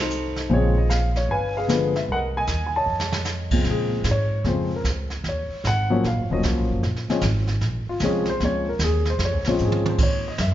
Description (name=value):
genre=jazz piano trio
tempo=152 BPM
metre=4/4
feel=swing 65% on 8ths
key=Bb minor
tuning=A4 = 441 Hz
part: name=warm upright piano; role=melody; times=0.0-10.5 s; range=Db3 to A5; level=-23 LUFS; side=left 2 dB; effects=none
part: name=upright bass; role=bass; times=0.0-10.5 s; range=Eb1 to Bb2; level=-24 LUFS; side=right 1 dB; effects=none
part: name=jazz brush drum kit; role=drums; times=0.1-10.5 s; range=brushed snare drum, crash cymbal, hi-hat, kick drum, snare drum, toms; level=-28 LUFS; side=right 2 dB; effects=none
room=moderate recital hall reverb, RT60 1.8 s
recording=recorded in a church or concert hall, nothing above 7.5 kHz, faint mains hum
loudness=-20 LUFS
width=side -12 dB against mid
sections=0.0-3.7 A section; 3.7-10.5 B section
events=drum fill 2.9-3.3, 9.6-10.0; upright piano solo 3.7-10.5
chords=0.0 F7b9 (rootless); 0.5 Bbm7; 1.3 G7b9; 2.1 Cm7; 2.9 F7b13; 3.7 Bbm7; 5.3 Ebm7; 6.8 Bbm7; 10.0 Ebm7